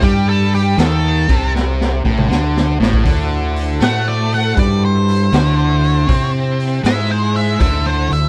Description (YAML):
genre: blues rock power trio and southern rock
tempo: 79 BPM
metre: 4/4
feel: swing 67% on 8ths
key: unclear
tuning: A4 = 444 Hz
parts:
  - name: octave-fuzz lead guitar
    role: melody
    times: 0.0-8.3 s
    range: G4 to F#5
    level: -22 LUFS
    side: equal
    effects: wah, distortion
  - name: overdriven electric guitar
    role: riff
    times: 0.0-8.3 s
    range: A2 to C4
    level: -20 LUFS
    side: equal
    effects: spring reverb
  - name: growling fingered electric bass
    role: bass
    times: 0.0-8.3 s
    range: A1 to C3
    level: -20 LUFS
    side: equal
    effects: overdrive
  - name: raw garage drum kit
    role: drums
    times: 0.0-8.2 s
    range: hi-hat, kick drum, snare drum, toms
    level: -21 LUFS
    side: equal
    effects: none
  - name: overdriven tonewheel organ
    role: sustained chords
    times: 3.0-8.3 s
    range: E4 to A5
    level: -32 LUFS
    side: equal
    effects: slow rotary speaker, chorus vibrato
room: little or no reverb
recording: none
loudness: -15 LUFS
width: mono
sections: 0.0-8.3 A section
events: lead electric guitar solo 0.0-8.3; drum fill 1.5-3.1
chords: 0.0 A5; 3.1 D7